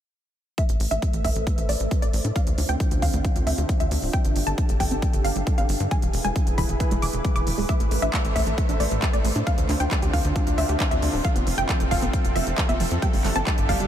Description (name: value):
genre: uplifting trance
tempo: 135 BPM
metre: 4/4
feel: straight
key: A minor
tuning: A4 = 440 Hz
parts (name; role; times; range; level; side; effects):
- wide unison pluck; melody; 0.6-13.9 s; D5 to D6; -29 LUFS; equal; sidechain pumping, tape echo
- supersaw pad; sustained chords; 0.8-13.9 s; D3 to E5; -30 LUFS; right 1 dB; sidechain pumping, low-pass filter
- tight sequenced synth; arpeggios; 0.6-13.8 s; F2 to G4; -32 LUFS; right 2 dB; chorus, cassette tape, sidechain pumping, tape echo
- electronic kick drum; drums; 0.6-13.8 s; none; -23 LUFS; equal; overdrive
- techno drum kit; drums; 0.6-13.9 s; handclaps, hi-hat; -31 LUFS; right 1 dB; none
- tight sequencer bass; bass; 0.7-13.9 s; D1 to A2; -26 LUFS; equal; sidechain pumping
room: light reverb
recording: none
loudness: -20 LUFS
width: side -10 dB against mid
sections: 0.6-13.9 A section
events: filter sweep on synth arpeggio sound 0.6-13.9; filter sweep on supersaw synth 0.6-13.9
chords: 0.6 Amadd9; 2.4 Dm7; 4.1 Gsus2; 5.9 E; 7.7 Amadd9; 9.5 Dm7; 11.2 F; 13.0 Gsus2